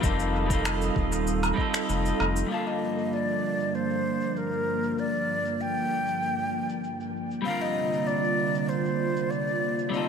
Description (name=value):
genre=sunset chillout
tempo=97 BPM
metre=4/4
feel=straight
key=G minor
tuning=A4 = 440 Hz
part: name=electric guitar at the edge of break-up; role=accompaniment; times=0.0-10.1 s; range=D3 to A5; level=-30 LUFS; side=moving between left 6 dB and right 8 dB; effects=auto-pan, dub echo
part: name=airy breathy pad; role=sustained chords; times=0.0-10.1 s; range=F2 to Eb6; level=-31 LUFS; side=equal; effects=chorus
part: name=round analog bass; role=bass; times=0.0-2.4 s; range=Eb1 to F1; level=-29 LUFS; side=equal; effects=none
part: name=electronic kick drum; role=drums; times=0.0-1.7 s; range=none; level=-28 LUFS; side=equal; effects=overdrive
part: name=electronic shaker, finger snaps and woodblock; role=drums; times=0.0-10.1 s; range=none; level=-34 LUFS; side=equal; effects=overdrive, low-pass filter on perc, low-pass filter on snare, low-pass filter on room, dub echo
part: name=breathy mellow silver concert flute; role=melody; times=2.5-10.1 s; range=Bb4 to G5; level=-29 LUFS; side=equal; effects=dub echo
room=moderate echo chamber reverb, RT60 2.0 s, digital ambience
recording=echo-heavy mix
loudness=-25 LUFS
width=side -6 dB against mid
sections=0.0-2.5 A section; 2.5-10.1 B section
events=none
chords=0.0 F7; 2.5 Gm7; 7.5 C9sus4